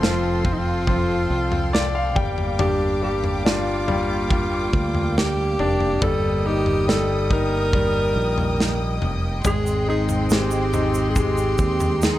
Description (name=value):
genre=pop ballad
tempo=70 BPM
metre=4/4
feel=straight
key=G minor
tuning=A4 = 440 Hz
part: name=clear alto saxophone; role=melody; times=0.0-12.2 s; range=Eb4 to Bb4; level=-24 LUFS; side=right 1 dB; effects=none
part: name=bright concert grand piano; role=accompaniment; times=0.0-12.2 s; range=F3 to G5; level=-26 LUFS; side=left 3 dB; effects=none
part: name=rich studio string section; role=sustained chords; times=0.0-12.2 s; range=Ab3 to Eb6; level=-30 LUFS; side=equal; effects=none
part: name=fingered electric bass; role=bass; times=0.0-12.2 s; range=F1 to Eb2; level=-25 LUFS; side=equal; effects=none
part: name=modern studio drum kit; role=drums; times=0.0-12.2 s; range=kick drum, snare drum, toms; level=-24 LUFS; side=equal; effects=none
part: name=rich chamber cello section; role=second line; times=9.4-12.2 s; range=C4 to Eb4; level=-28 LUFS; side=right 1 dB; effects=none
part: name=egg shaker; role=percussion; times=9.4-12.2 s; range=none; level=-36 LUFS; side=right 7 dB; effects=none
room=little or no reverb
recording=none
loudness=-19 LUFS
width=side -14 dB against mid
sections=0.0-12.2 A section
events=grand piano fill 1.3-2.6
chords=0.0 Fadd9; 2.2 Gm7; 6.0 Eb/G; 9.4 Abmaj7